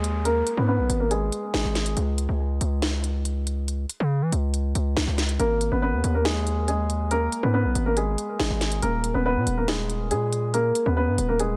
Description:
hip hop, drill; 140 BPM; 4/4; half-time; G# minor; A4 = 440 Hz
dark grand piano; melody; 0.0-1.9, 5.4-11.6 s; G#3 to B4; -27 LUFS; equal; low-pass filter, analog delay
distorted 808-style bass; bass; 0.0-11.6 s; D#1 to E3; -27 LUFS; equal; distortion
drill drum kit; drums; 0.0-11.5 s; hi-hat, snare drum; -31 LUFS; equal; vintage 12-bit sampler grit
downlifter; sound effects; 0.0-2.0 s; -47 LUFS; equal
studio ambience; echo-heavy mix; -24 LUFS; mono
0.0-11.6 A section
0.0 G#madd9; 2.0 N.C.; 5.4 G#madd9; 8.8 D#sus4

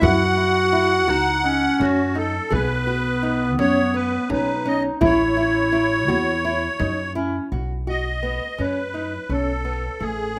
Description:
contemporary instrumental, chamber music in an uneven meter; 168 BPM (eighths); 7/8; straight; B mixolydian; A4 = 443 Hz
musette accordion; melody; 0.0-10.4 s; F#4 to F#5; -26 LUFS; equal
growling clarinet; second line; 0.0-7.5 s; B3 to F#4; -25 LUFS; equal
nylon-string guitar; arpeggios; 0.0-10.4 s; A3 to G#4; -27 LUFS; equal
upright bass; bass; 0.0-10.4 s; A1 to F#2; -29 LUFS; equal
frame drum; percussion; 0.0-7.3 s; -29 LUFS; equal
light reverb; close, detailed microphones; -21 LUFS; mono
0.0-7.5 A section; 7.5-10.4 B section
0.0 F#5; 2.5 Badd9; 5.0 A; 7.5 Badd9

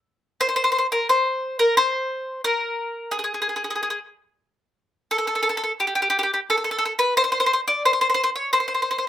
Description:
italian folk; 89 BPM; 4/4; rubato; A4 = 440 Hz
bowl-back mandolin; solo; 0.4-9.0 s; G4 to D5; -20 LUFS; left 1 dB; slapback echo
little or no reverb; recorded outdoors, with no room sound; -20 LUFS; side -11 dB against mid
0.0-9.1 A section

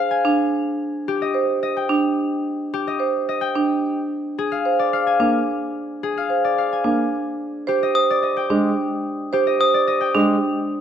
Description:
classical, minimalist pattern music; 109 BPM; 3/4; straight; Ab lydian; A4 = 440 Hz
concert harp; melody; 0.0-10.8 s; G4 to Ab5; -22 LUFS; left 5 dB
marimba with medium hard mallets; arpeggios; 0.2-10.3 s; D4 to C5; -21 LUFS; right 5 dB
warm grand piano; accompaniment; 5.2-10.3 s; Ab3 to Bb3; -24 LUFS; equal
glockenspiel with hard plastic mallets; arpeggios; 8.0-9.8 s; Eb6; -23 LUFS; left 4 dB
moderate recital hall reverb, RT60 1.6 s; dark, warm production; -18 LUFS; side -8 dB against mid
0.0-10.8 A section
0.0 Ddim; 0.7 Abmaj7; 4.0 Bb7; 7.3 Abmaj7

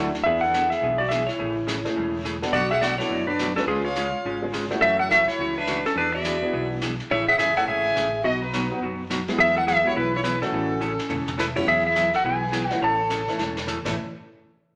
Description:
country, western swing; 210 BPM; 4/4; swing 62% on 8ths; A major; A4 = 445 Hz
clean lap steel guitar; melody; 0.0-13.6 s; C#4 to A5; -25 LUFS; equal
archtop guitar, miked and amplified; accompaniment; 0.0-13.9 s; A2 to A4; -33 LUFS; equal
clear upright piano; accompaniment; 0.0-14.0 s; E3 to B4; -33 LUFS; equal
mellow fretless electric bass; bass; 0.0-14.0 s; E1 to F#2; -37 LUFS; equal
vintage brush drum kit; drums; 0.1-13.9 s; brushed snare drum, crash cymbal, hi-hat, kick drum, snare drum, toms; -37 LUFS; equal
rich fiddle; second line; 2.5-13.6 s; C#4 to G#5; -34 LUFS; equal
wet large studio reverb, RT60 1.1 s; -23 LUFS; mono
0.0-11.7 A section; 11.7-14.0 B section
drum fill 2.3, 10.8-11.4, 13.4
0.3 E7; 1.4 Amaj7; 2.5 Bm7; 3.7 C#; 4.8 F#m7; 6.0 E7; 7.1 Amaj7; 8.2 B; 9.4 Eadd9; 10.5 A; 11.7 Eadd9; 12.8 A; 14.0 N.C.

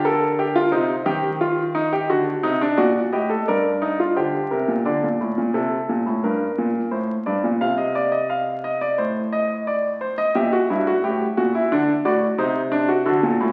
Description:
classical, baroque-style 3-part fugue for grand piano; 88 BPM; 4/4; straight; A4 = 441 Hz
warm concert grand piano; solo; 0.0-13.5 s; G2 to F#5; -21 LUFS; equal
wet recital hall reverb, RT60 1.3 s; very old 78 rpm record, vinyl crackle; -21 LUFS; mono
0.0-4.9 A section; 4.9-13.5 B section
0.0 Gm/D; 0.7 Cm; 2.1 D; 3.5 Gm; 4.9 Bb; 6.2 Gm; 7.6 Cm; 9.0 Adim; 10.3 Gm69; 11.7 D

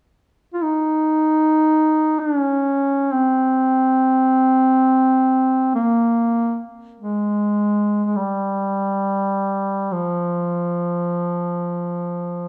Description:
caucasian folk; free time; A4 = 440 Hz
warm duduk; melody; 0.5-12.5 s; F3 to F4; -19 LUFS; equal
light reverb, small room ambience; rough home demo mix, studio reverb; -19 LUFS; mono
0.1-12.5 A section

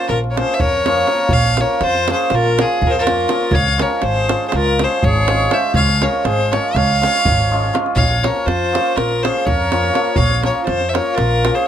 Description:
balkan folk, Balkan wedding band; 243 BPM (eighths); 9/8; straight; Bb minor; A4 = 444 Hz
rich fiddle; melody; 0.0-11.7 s; Ab4 to F5; -18 LUFS; left 3 dB
accordion; second line; 0.0-11.7 s; F4 to Db5; -23 LUFS; right 1 dB
hammered dulcimer; accompaniment; 0.0-11.7 s; F3 to F4; -20 LUFS; right 2 dB
upright bass; bass; 0.1-11.5 s; Ab1 to F2; -20 LUFS; equal
davul; percussion; 0.1-11.6 s; -21 LUFS; right 2 dB
light reverb; -14 LUFS; side -9 dB against mid
0.0-11.7 A section
0.0 Bbm; 3.5 Db; 8.0 Bbm

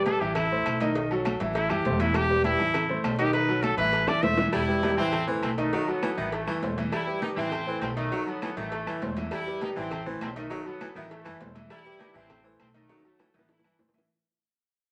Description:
latin, salsa; 201 BPM; 4/4; straight; A4 = 439 Hz
bright trumpet; melody; 0.0-4.5 s; E4 to E5; -29 LUFS; equal
bright grand piano; accompaniment; 0.0-14.1 s; D#3 to E5; -32 LUFS; equal
upright bass; bass; 0.0-14.1 s; E1 to B1; -36 LUFS; equal
agogo bells and timbales; percussion; 0.1-14.1 s; -41 LUFS; equal
congas; percussion; 0.1-14.1 s; -39 LUFS; equal
cowbell and bongos; percussion; 0.1-14.1 s; -38 LUFS; equal
claves; percussion; 0.4-13.8 s; -48 LUFS; equal
bright trumpet section; melody; 4.5-13.8 s; A3 to E4; -37 LUFS; equal
edgy baritone saxophone; second line; 4.5-13.9 s; D#3 to G3; -37 LUFS; equal
wet studio reverb, RT60 0.9 s; vinyl crackle; -27 LUFS; mono
0.0-4.5 A section; 4.5-14.1 B section
trumpet solo 0.0-4.5; drum fill 4.1-4.5, 12.9-14.1; fade-out 4.5-14.1
0.4 Am; 1.0 B7; 1.6 Am; 2.1 Em; 2.7 Am; 3.3 B7; 3.9 Am; 4.5 Em; 5.1 Am; 5.7 B7; 6.3 Am; 6.9 Em; 7.5 Am; 8.1 B7; 8.7 Am; 9.3 Em; 9.9 Am; 10.5 B7; 11.1 Am; 11.7 Em; 12.3 Am; 12.9 B7; 13.5 Am

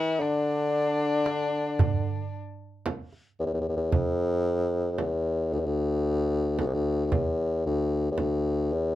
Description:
Arabic maqam ensemble; 113 BPM (eighths); 10/8; straight; A4 = 443 Hz
mellow bassoon; melody; 0.0-8.9 s; C2 to Eb3+49c; -25 LUFS; left 1 dB
dark violin; second line; 0.0-2.3 s; D4 to Eb4+50c; -32 LUFS; left 4 dB
darbuka; percussion; 0.2-3.3 s; -28 LUFS; right 4 dB
frame drum; percussion; 1.8-8.4 s; -28 LUFS; right 3 dB
light reverb; dark, warm production; -25 LUFS; side -14 dB against mid
0.0-3.9 A section; 3.9-8.9 B section

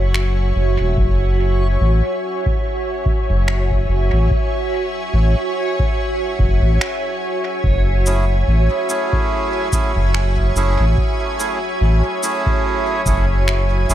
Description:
ambient dub; 72 BPM; 4/4; swing 57% on 16ths; F# minor; A4 = 439 Hz
soft additive organ-like pad; sustained chords; 0.0-13.9 s; F#4 to G#5; -22 LUFS; right 2 dB; ensemble chorus, built-in reverb
round analog bass; bass; 0.0-13.9 s; E1 to A1; -15 LUFS; equal
backwards swelling texture; texture; 0.0-13.9 s; C#5; -30 LUFS; left 1 dB; built-in reverb
electronic finger snaps and cabasa; drums; 0.1-13.9 s; -26 LUFS; equal; dub echo
electronic kick drum; drums; 1.0-13.2 s; -20 LUFS; equal
melodica; stabs; 8.1-13.9 s; A3 to G#4; -23 LUFS; right 4 dB; dub echo
light reverb; echo-heavy mix; -15 LUFS; side -12 dB against mid
0.0-13.9 A section
0.0 F#m9

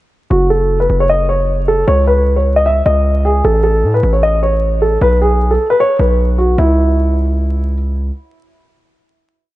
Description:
hip hop, trap; 153 BPM; 4/4; half-time; C# minor; A4 = 435 Hz
dark concert grand piano; melody; 0.3-7.7 s; E4 to E5; -13 LUFS; equal; low-pass filter
hard-hitting 808-style bass; bass; 0.3-8.1 s; F#1 to A2; -14 LUFS; equal
light reverb, studio ambience; vinyl crackle, nothing above 10.3 kHz; -11 LUFS; side -16 dB against mid
0.3-6.6 breakdown; 6.6-9.6 final chord
0.3 F#5; 1.9 C#sus2; 3.4 A; 5.0 N.C.; 6.6 C#m

